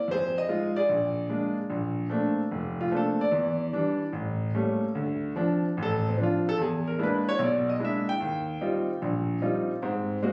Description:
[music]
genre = solo jazz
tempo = 148 BPM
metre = 4/4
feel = swing 66% on 8ths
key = Bb major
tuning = A4 = 438 Hz
[part]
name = clear concert grand piano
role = solo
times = 0.0-10.3 s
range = F1 to G5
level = -28 LUFS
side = equal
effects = none
[sound]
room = light reverb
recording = recorded on a phone in the room, club reverb, compression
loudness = -28 LUFS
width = mono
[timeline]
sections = 0.0-1.7 A section; 1.7-10.3 B section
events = grand piano solo 1.7-10.3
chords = 0.1 Fm7; 0.9 Bb7; 1.7 Bbmaj9; 3.3 Em7; 4.1 A7b9; 4.9 Dm7; 6.6 E7#11; 8.2 Eb69; 9.8 Ab9

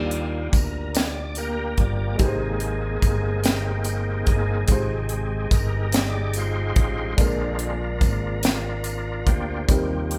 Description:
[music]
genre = slow gospel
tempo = 48 BPM (dotted quarters)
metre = 6/8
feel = straight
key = Eb major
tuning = A4 = 443 Hz
[part]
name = warm upright piano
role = accompaniment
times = 0.0-10.2 s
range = Bb2 to C5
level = -34 LUFS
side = equal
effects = none
[part]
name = overdriven tonewheel organ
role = sustained chords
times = 0.0-10.2 s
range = D3 to D5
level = -31 LUFS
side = equal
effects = slow rotary speaker, chorus vibrato
[part]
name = fingered electric bass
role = bass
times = 0.0-10.2 s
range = G1 to Eb2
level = -29 LUFS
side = equal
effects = none
[part]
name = crisp fusion drum kit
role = drums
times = 0.1-10.2 s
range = hi-hat, kick drum, snare drum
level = -24 LUFS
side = equal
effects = none
[part]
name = tambourine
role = percussion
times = 0.5-10.1 s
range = none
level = -39 LUFS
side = equal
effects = none
[sound]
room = moderate large studio reverb, RT60 1.2 s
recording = band playing live in one room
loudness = -23 LUFS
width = mono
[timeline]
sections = 0.0-10.2 A section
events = tonewheel organ solo 0.0-10.2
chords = 0.0 Ebmaj7; 2.2 Abmaj7; 4.7 Fm7; 7.2 Bb7; 9.7 Eb6

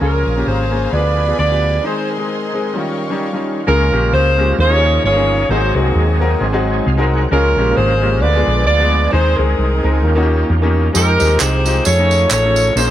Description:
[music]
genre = uptempo gospel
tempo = 132 BPM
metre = 4/4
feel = swing 55% on 8ths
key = Ab major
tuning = A4 = 443 Hz
[part]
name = warm saxophone section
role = melody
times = 0.0-12.9 s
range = C4 to D5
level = -17 LUFS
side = equal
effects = none
[part]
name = clear upright piano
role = accompaniment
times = 0.0-12.9 s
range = Ab2 to G#5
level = -20 LUFS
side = left 3 dB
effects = none
[part]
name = overdriven tonewheel organ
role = sustained chords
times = 0.0-12.9 s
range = Eb3 to G5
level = -24 LUFS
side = right 4 dB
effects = slow rotary speaker, chorus vibrato
[part]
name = warm studio string section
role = sustained chords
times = 0.0-3.7 s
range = Db4 to Db6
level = -28 LUFS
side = left 2 dB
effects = none
[part]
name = hollow-body short-scale fingered electric bass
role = bass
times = 0.0-12.9 s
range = G1 to F2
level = -16 LUFS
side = equal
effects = none
[part]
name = tambourine and handclaps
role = percussion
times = 10.9-12.9 s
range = none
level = -21 LUFS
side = right 6 dB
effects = none
[sound]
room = light reverb, small room ambience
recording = none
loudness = -12 LUFS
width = side -12 dB against mid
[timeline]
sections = 0.0-3.7 A section; 3.7-12.9 B section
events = break 1.8-3.7; tonewheel organ fill 6.4-7.3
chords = 0.0 Db6; 0.9 Ddim7; 1.8 Ab/Eb; 2.8 Eb9; 3.7 Db6; 4.6 Eb9sus4; 5.5 Ab9; 7.3 Db6; 8.2 Ddim7; 9.1 Ab; 10.0 Eb9; 10.9 Fm9; 11.9 F7alt

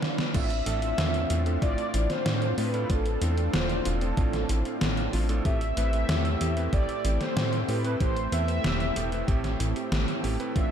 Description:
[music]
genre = synthwave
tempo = 94 BPM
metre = 4/4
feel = straight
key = A minor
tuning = A4 = 441 Hz
[part]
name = analog string pad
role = sustained chords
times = 0.0-10.7 s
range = A3 to B4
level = -35 LUFS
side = left 2 dB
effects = ensemble chorus, sidechain pumping
[part]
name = gated 80s digital drum machine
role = drums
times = 0.0-10.7 s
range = crash cymbal, hi-hat, snare drum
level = -31 LUFS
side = equal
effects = gated reverb, gated reverb snare, overdrive
[part]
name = mellow synth brass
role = melody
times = 0.3-10.7 s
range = A4 to E5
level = -32 LUFS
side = equal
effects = chorus, slapback echo, ping-pong delay
[part]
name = warm electric grand piano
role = stabs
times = 0.3-10.7 s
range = A2 to B4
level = -33 LUFS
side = right 3 dB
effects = slapback echo
[part]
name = chorused synth bass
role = bass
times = 0.3-10.7 s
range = E1 to A2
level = -28 LUFS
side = equal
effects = sidechain pumping
[part]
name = electronic kick drum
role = drums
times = 0.3-10.7 s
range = none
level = -27 LUFS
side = equal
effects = overdrive
[sound]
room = moderate lush hall reverb, RT60 1.7 s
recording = big arena sound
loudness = -24 LUFS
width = side -8 dB against mid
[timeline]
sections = 0.3-10.7 A section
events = break 0.0-0.3; drum fill 0.0-0.3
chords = 0.3 Dm7/A; 5.5 Am7

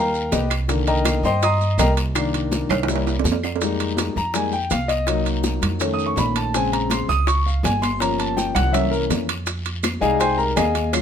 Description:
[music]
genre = Afro-Cuban jazz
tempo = 164 BPM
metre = 4/4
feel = straight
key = C minor, F minor from 3.6 s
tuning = A4 = 440 Hz
[part]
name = clear concert grand piano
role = accompaniment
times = 0.0-11.0 s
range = Db3 to Eb6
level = -21 LUFS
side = left 2 dB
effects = none
[part]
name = upright bass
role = bass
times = 0.0-11.0 s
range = G1 to G2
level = -24 LUFS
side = right 1 dB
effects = none
[part]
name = congas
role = percussion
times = 0.1-11.0 s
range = none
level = -30 LUFS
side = left 1 dB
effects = none
[part]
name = maracas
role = percussion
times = 0.1-11.0 s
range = none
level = -34 LUFS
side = right 7 dB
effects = none
[part]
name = bongos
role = percussion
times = 0.3-11.0 s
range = none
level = -29 LUFS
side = left 6 dB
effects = none
[part]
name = guiro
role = percussion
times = 0.3-11.0 s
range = none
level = -35 LUFS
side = left 4 dB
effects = none
[part]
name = timbales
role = percussion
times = 0.3-11.0 s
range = none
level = -27 LUFS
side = right 11 dB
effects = none
[part]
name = claves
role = percussion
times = 0.5-3.6, 9.8-11.0 s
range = none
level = -32 LUFS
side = right 4 dB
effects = none
[sound]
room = light reverb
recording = minimal, uncompressed stereo recording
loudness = -18 LUFS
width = side -8 dB against mid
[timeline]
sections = 0.0-3.6 A section; 3.6-11.0 A section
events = grand piano solo 0.0-11.0; drum fill 2.7-3.6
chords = 0.0 G7alt; 0.7 Cm9; 2.9 C7; 3.6 Fm11; 5.1 Cm7b5; 5.8 Faug7; 6.5 Bbm9; 8.0 Gm7b5; 8.7 C7b9; 9.5 Fm9

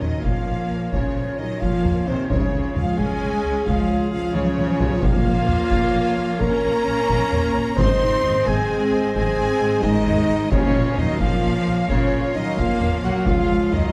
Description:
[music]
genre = cinematic, epic orchestral film score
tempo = 88 BPM (dotted quarters)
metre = 12/8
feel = straight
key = Bb minor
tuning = A4 = 442 Hz
[part]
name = rich symphonic violin section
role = melody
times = 0.0-13.9 s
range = C5 to C6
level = -38 LUFS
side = equal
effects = none
[part]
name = mellow hollow silver concert flute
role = second line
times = 0.0-13.9 s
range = C5 to C6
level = -33 LUFS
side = equal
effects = none
[part]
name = rich symphonic violin section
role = second line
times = 0.0-13.9 s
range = C5 to C6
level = -35 LUFS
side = equal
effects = none
[part]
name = rich studio viola section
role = accompaniment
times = 0.0-13.9 s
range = Eb3 to Eb4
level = -29 LUFS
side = equal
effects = none
[part]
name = clear woodwind section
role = sustained chords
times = 0.0-13.9 s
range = C4 to F5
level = -34 LUFS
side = equal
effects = none
[part]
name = warm French horn section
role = sustained chords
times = 0.0-13.9 s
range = C4 to C5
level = -26 LUFS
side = equal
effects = none
[part]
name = clear symphonic cello section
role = bass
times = 0.0-13.9 s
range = C3 to C4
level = -30 LUFS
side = equal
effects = none
[part]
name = clear symphonic double bass section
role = bass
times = 0.0-13.8 s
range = Ab1 to Db2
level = -30 LUFS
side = equal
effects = none
[part]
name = taiko ensemble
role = drums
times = 0.0-13.9 s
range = none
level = -27 LUFS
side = equal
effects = none
[part]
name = timpani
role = percussion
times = 0.0-0.2, 5.0-5.7, 10.5-11.2 s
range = Bb2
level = -32 LUFS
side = equal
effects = none
[part]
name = reverse cymbal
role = sound effects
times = 13.3-13.9 s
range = none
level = barely audible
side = none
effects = none
[sound]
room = wet scoring stage reverb, RT60 1.7 s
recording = dark, warm production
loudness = -20 LUFS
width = mono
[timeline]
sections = 0.0-13.9 A section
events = drum fill 4.4-5.0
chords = 0.0 Bbm; 2.3 Db; 5.0 Bbm; 7.8 Ab; 10.5 Bbm; 13.3 Db

